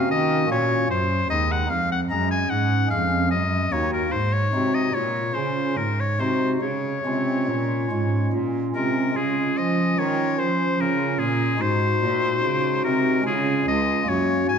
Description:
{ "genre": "classical, baroque-style sonata movement with continuo", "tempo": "74 BPM", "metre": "3/4", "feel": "rubato", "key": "Db major", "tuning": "A4 = 439 Hz", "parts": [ { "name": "bright oboe", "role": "melody", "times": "0.0-14.6 s", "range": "Ab4 to Bb5", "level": "-24 LUFS", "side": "left 3 dB", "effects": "none" }, { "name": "pipe organ, stopped flute", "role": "accompaniment", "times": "0.0-14.6 s", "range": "Db2 to Ab4", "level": "-24 LUFS", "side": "right 1 dB", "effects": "none" }, { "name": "rich cello", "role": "bass", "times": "0.0-14.6 s", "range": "Db2 to F3", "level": "-25 LUFS", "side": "right 1 dB", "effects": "none" } ], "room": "wet recital hall reverb, RT60 1.5 s", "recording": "none", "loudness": "-20 LUFS", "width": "side -6 dB against mid", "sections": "0.0-9.2 A section; 9.2-14.6 B section", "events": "none", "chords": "0.0 Ebm7; 0.9 Ab7/Gb; 1.7 Db/F; 3.3 Ebm/Gb; 4.1 Ab7; 4.9 Bbm; 5.8 Ab7; 6.6 Db; 11.6 Ab7; 13.3 Db" }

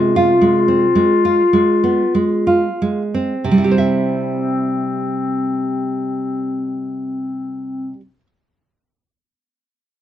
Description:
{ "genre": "romantic duo for clarinet and classical guitar", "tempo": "43-60 BPM", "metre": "4/4", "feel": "rubato", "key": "C major", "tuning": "A4 = 441 Hz", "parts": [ { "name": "warm clarinet", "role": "melody", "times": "0.0-7.9 s", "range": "C4 to F4", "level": "-18 LUFS", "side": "left 3 dB", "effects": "none" }, { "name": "nylon-string guitar", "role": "accompaniment", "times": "0.0-8.3 s", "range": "C3 to E5", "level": "-18 LUFS", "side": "right 3 dB", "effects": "none" } ], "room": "moderate studio ambience, RT60 0.5 s", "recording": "dark, warm production", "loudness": "-15 LUFS", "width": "side -11 dB against mid", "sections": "0.0-3.4 A section; 3.4-8.0 B section", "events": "slowing down 0.0-3.4", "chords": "0.0 Fm/C; 3.4 C" }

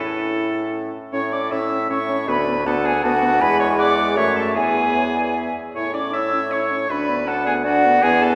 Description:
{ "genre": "quick classical-period movement for wind quintet", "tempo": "157 BPM", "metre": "3/4", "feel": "rubato", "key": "A major", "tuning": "A4 = 440 Hz", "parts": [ { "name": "mellow concert flute", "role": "melody", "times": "0.0-8.4 s", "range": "F#5 to E6", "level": "-24 LUFS", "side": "equal", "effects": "none" }, { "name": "clear oboe", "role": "second line", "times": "0.0-8.4 s", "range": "F#4 to E5", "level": "-28 LUFS", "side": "equal", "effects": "none" }, { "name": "clear French horn", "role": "accompaniment", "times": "0.0-8.4 s", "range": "G#3 to E4", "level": "-28 LUFS", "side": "equal", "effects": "none" }, { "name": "dark clarinet", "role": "accompaniment", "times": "0.0-8.4 s", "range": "C#4 to A5", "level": "-28 LUFS", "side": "equal", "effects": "none" }, { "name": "clear bassoon", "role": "bass", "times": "0.0-8.4 s", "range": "D2 to A2", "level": "-26 LUFS", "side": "equal", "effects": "none" } ], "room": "wet concert hall reverb, RT60 2.5 s", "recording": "recorded in a church or concert hall", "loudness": "-20 LUFS", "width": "mono", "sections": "0.0-1.1 A section; 1.1-8.4 B section", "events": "none", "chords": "0.0 A; 2.3 Bm/D; 3.4 E; 4.2 F#m7; 4.6 E; 5.7 A; 6.9 Bm/D" }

